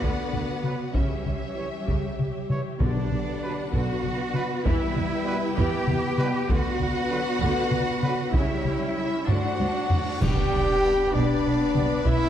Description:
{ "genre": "cinematic, epic orchestral film score", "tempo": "65 BPM (dotted quarters)", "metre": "6/8", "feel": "straight", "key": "B minor", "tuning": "A4 = 439 Hz", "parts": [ { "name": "warm symphonic violin section", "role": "melody", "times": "0.0-12.3 s", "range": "B4 to G5", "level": "-37 LUFS", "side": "left 4 dB", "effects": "none" }, { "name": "warm symphonic violin section", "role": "second line", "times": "0.0-12.3 s", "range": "B4 to G5", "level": "-36 LUFS", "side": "left 3 dB", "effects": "none" }, { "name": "rich symphonic viola section", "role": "accompaniment", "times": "0.0-12.3 s", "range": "C#3 to G4", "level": "-35 LUFS", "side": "right 1 dB", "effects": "none" }, { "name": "dark French horn section", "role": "sustained chords", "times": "0.0-12.3 s", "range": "D3 to G4", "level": "-29 LUFS", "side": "left 3 dB", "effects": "none" }, { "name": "rich symphonic string section", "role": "sustained chords", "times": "0.0-12.3 s", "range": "G3 to B5", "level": "-35 LUFS", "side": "left 1 dB", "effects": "none" }, { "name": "dark symphonic double bass section", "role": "bass", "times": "0.0-12.1 s", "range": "B1 to E2", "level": "-30 LUFS", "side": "right 3 dB", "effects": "none" }, { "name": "rich symphonic cello section", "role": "bass", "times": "0.0-12.1 s", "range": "B2 to G4", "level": "-32 LUFS", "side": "right 2 dB", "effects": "none" }, { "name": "taiko ensemble", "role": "drums", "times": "0.0-12.3 s", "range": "none", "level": "-28 LUFS", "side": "equal", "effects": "none" }, { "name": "warm trombone section", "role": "sustained chords", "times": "0.6-11.9 s", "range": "B2 to B3", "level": "-40 LUFS", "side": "right 4 dB", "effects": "none" }, { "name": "clear trumpet", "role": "stabs", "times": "0.6-12.3 s", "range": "D4 to C#5", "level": "-34 LUFS", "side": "right 2 dB", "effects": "none" }, { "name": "timpani", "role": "percussion", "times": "2.8-3.7 s", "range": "B2", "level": "-31 LUFS", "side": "left 2 dB", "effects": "none" }, { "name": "cymbal swell, clash cymbals and concert bass drum", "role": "percussion", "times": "6.5-11.4 s", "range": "none", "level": "-32 LUFS", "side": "equal", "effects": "none" }, { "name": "reverse cymbal and impact", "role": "sound effects", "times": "10.0-12.1 s", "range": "none", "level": "-38 LUFS", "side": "equal", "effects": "none" }, { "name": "hollow large flute ensemble", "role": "second line", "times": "10.2-12.3 s", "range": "B4 to D5", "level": "-35 LUFS", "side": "left 2 dB", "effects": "none" } ], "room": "moderate scoring stage reverb, RT60 2.0 s", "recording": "dark, warm production", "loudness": "-22 LUFS", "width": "side -10 dB against mid", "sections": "0.0-10.2 A section; 10.2-12.3 B section", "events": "drum fill 9.3-10.2; reverse cymbal 10.0; band accent 10.2-10.8; impact 10.2-12.1", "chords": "0.0 Bm/D; 1.0 C#dim; 2.8 Bm; 4.7 Em; 6.5 Bm/D; 8.3 C#dim; 9.3 D7; 10.2 G/B" }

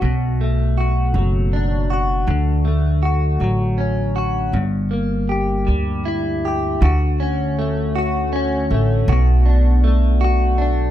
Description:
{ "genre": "six-eight pop ballad", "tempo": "53 BPM (dotted quarters)", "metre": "6/8", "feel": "straight", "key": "D major", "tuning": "A4 = 441 Hz", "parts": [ { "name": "direct-recorded clean electric guitar", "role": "accompaniment", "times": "0.0-10.9 s", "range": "G2 to G4", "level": "-20 LUFS", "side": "left 1 dB", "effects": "double-tracked left and right" }, { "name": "upright bass", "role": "bass", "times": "0.0-10.9 s", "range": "F#1 to D2", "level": "-18 LUFS", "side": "equal", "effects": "none" } ], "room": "light reverb, small room ambience", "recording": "none", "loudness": "-16 LUFS", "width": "side -12 dB against mid", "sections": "0.0-6.8 A section; 6.8-10.9 B section", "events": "none", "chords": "0.0 Bm7; 2.3 Dmaj7; 4.5 Gm6; 6.8 Dmaj7; 9.1 Bm7" }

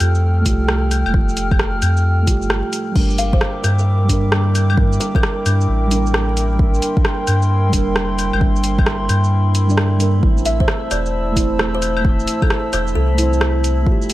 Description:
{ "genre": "future garage", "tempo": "132 BPM", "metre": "4/4", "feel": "swing 65% on 16ths", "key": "G dorian", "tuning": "A4 = 440 Hz", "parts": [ { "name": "muted felt-like synth keys", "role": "accompaniment", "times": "0.0-14.1 s", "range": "G3 to D5", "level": "-22 LUFS", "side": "right 2 dB", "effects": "chorus, sidechain pumping, tape echo" }, { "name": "dark analog pad", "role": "sustained chords", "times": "0.0-14.1 s", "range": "A4 to F6", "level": "-25 LUFS", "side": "left 1 dB", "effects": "chorus, vintage 12-bit sampler grit, sidechain pumping" }, { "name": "soft dub sub bass", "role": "bass", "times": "0.0-13.9 s", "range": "E1 to G2", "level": "-17 LUFS", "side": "equal", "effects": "sidechain pumping" }, { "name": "deep house drum kit", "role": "drums", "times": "0.0-14.1 s", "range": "claves, crash cymbal, hi-hat, rim click, shaker", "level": "-22 LUFS", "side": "equal", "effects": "none" }, { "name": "electronic kick drum", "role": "drums", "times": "0.5-14.0 s", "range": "none", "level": "-17 LUFS", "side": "equal", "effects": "none" }, { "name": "drifting glass-harmonics texture", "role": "texture", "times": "3.4-14.1 s", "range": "E4 to E5", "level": "-32 LUFS", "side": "right 2 dB", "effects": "chorus, built-in reverb" }, { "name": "kalimba", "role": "melody", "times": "3.2-5.6, 10.5-13.6 s", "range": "A4 to F5", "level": "-26 LUFS", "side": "left 1 dB", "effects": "tape echo" } ], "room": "light reverb", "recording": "vinyl crackle", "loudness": "-14 LUFS", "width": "side -16 dB against mid", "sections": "0.0-14.1 A section", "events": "none", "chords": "0.0 Fadd9; 3.0 Gm; 10.2 Am" }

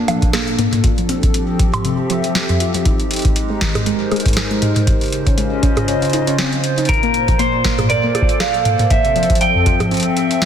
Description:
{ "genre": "IDM", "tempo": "119 BPM", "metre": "4/4", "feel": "swing 56% on 16ths", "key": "unclear", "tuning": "A4 = 441 Hz", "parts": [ { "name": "hollow soft pad", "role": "sustained chords", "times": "0.0-10.5 s", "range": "Bb2 to G5", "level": "-20 LUFS", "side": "equal", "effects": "chorus, vintage 12-bit sampler grit, sidechain pumping" }, { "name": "warbly dusty pluck", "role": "arpeggios", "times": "0.0-10.0 s", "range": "F2 to Bb4", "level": "-21 LUFS", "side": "left 2 dB", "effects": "chorus, tape echo" }, { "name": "booming analog drum machine", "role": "drums", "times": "0.1-10.5 s", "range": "bongos, hi-hat, snare drum, toms", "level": "-20 LUFS", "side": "right 1 dB", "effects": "tape echo" }, { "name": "electronic kick drum", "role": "drums", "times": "0.2-9.8 s", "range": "none", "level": "-18 LUFS", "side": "equal", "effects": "none" }, { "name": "electric guitar at the edge of break-up", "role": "melody", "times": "6.9-10.1 s", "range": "Bb4 to G5", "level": "-17 LUFS", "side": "right 3 dB", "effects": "digital delay" } ], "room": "moderate lush hall reverb, RT60 1.8 s", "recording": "dense, heavily limited modern master", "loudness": "-14 LUFS", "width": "side -8 dB against mid", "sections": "0.0-10.5 A section", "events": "none", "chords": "0.0 Bbmaj7; 0.8 Fmaj9; 2.9 Abmaj9; 4.9 Dbmaj9; 6.9 Bbmaj9; 8.9 Fmaj9" }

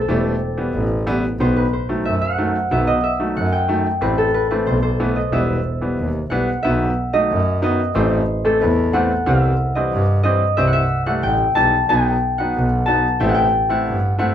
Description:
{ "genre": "klezmer", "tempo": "91 BPM", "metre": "2/4", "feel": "straight", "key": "unclear", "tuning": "A4 = 438 Hz", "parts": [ { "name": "concert harp", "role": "melody", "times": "0.0-14.3 s", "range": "G4 to A5", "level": "-20 LUFS", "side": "equal", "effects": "none" }, { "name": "bright upright piano", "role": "accompaniment", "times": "0.1-14.3 s", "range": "D#3 to E4", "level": "-22 LUFS", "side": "left 1 dB", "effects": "none" }, { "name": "clear double bass", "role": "bass", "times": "0.1-14.3 s", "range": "E1 to G2", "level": "-20 LUFS", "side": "equal", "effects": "none" } ], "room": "light reverb", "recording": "none", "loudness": "-16 LUFS", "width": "side -10 dB against mid", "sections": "0.0-6.6 A section; 6.6-14.3 B section", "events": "none", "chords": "0.0 Em; 1.4 B; 4.0 Am; 5.3 Em; 6.6 B; 8.0 Am; 9.3 C; 11.9 B; 13.2 Am" }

